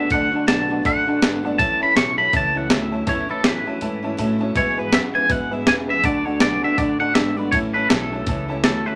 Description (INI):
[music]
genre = rockabilly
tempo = 162 BPM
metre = 4/4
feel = swing 59% on 8ths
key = A major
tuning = A4 = 440 Hz
[part]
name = twangy electric guitar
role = melody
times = 0.0-9.0 s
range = A4 to C#6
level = -24 LUFS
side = equal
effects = tremolo
[part]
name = honky-tonk upright piano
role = accompaniment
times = 0.0-9.0 s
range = B4 to B5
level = -32 LUFS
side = equal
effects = none
[part]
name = picked steel-string acoustic guitar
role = accompaniment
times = 0.0-9.0 s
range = E2 to F#4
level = -33 LUFS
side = equal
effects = none
[part]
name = electric guitar through a small old amp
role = riff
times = 0.0-9.0 s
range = E2 to B3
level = -28 LUFS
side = equal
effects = none
[part]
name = upright bass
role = bass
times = 0.0-9.0 s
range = G#1 to A2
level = -31 LUFS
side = equal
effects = none
[part]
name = breakbeat sampler-style drum kit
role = drums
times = 0.1-8.7 s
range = hi-hat, kick drum, snare drum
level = -23 LUFS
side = equal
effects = none
[sound]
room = moderate small room reverb, RT60 0.5 s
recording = none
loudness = -20 LUFS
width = mono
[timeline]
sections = 0.0-9.0 A section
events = kick and snare drop out 3.8-4.6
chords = 0.0 D; 1.6 A; 4.6 E; 6.0 D; 7.5 A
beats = | 0.11 0.48 0.85 1.22 | 1.59 1.96 2.33 2.71 | 3.08 3.45 3.82 4.19 | 4.56 4.93 5.30 5.67 | 6.04 6.42 6.79 7.16 | 7.53 7.90 8.27 8.64